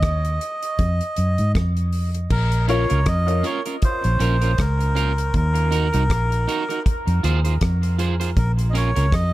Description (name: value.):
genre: dub reggae.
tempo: 79 BPM.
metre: 4/4.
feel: swing 57% on 16ths.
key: Bb minor.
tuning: A4 = 440 Hz.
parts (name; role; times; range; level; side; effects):
melodica; melody; 0.0-9.3 s; Bb4 to Eb5; -26 LUFS; right 1 dB; low-pass filter, dub echo.
vintage muted fingered electric bass; bass; 0.0-9.3 s; Bb1 to Ab2; -19 LUFS; equal; none.
damped 70s drum kit; drums; 0.0-9.3 s; crash cymbal, hi-hat, kick drum, rim click; -24 LUFS; equal; none.
electric guitar at the edge of break-up; accompaniment; 2.7-9.1 s; Db4 to C5; -28 LUFS; right 6 dB; low-pass filter, dub echo.
bright baby grand piano; stabs; 2.7-2.9 s; F4 to F5; -30 LUFS; left 5 dB; low-pass filter, dub echo.
room: studio ambience.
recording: echo-heavy mix.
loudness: -18 LUFS.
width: side -16 dB against mid.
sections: 0.0-2.3 A section; 2.3-9.3 B section.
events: break 0.0-2.3; filter sweep 0.0-2.3.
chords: 0.0 N.C.; 2.3 Bbm; 5.3 Ebm; 6.9 Fm; 8.4 Bbm.